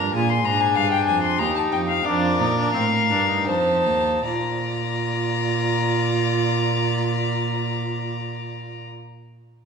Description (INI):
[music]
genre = classical, baroque-style fugue for string quartet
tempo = 74-100 BPM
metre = 3/4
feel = straight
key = Bb major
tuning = A4 = 440 Hz
[part]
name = dark violin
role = melody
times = 0.0-8.9 s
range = D5 to C6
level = -24 LUFS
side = left 6 dB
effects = none
[part]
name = warm violin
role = second line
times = 0.0-8.9 s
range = G4 to D5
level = -27 LUFS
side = left 2 dB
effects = none
[part]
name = warm viola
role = accompaniment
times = 0.0-8.9 s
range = C4 to F4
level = -27 LUFS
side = right 3 dB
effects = none
[part]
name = dark cello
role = bass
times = 0.0-8.9 s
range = Eb2 to Bb2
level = -25 LUFS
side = right 4 dB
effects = none
[sound]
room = wet recital hall reverb, RT60 1.6 s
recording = recorded in a church or concert hall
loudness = -19 LUFS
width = side -6 dB against mid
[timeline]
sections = 0.0-4.3 A section; 4.3-9.1 B section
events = slowing down 0.0-4.3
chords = 0.1 Bb7; 1.4 Eb; 2.0 Bb/F; 3.5 F7; 4.3 Bb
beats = | 0.15 0.76 1.39 | 2.05 2.74 3.47 | 4.25 5.06 5.87 | 6.68 7.49 8.29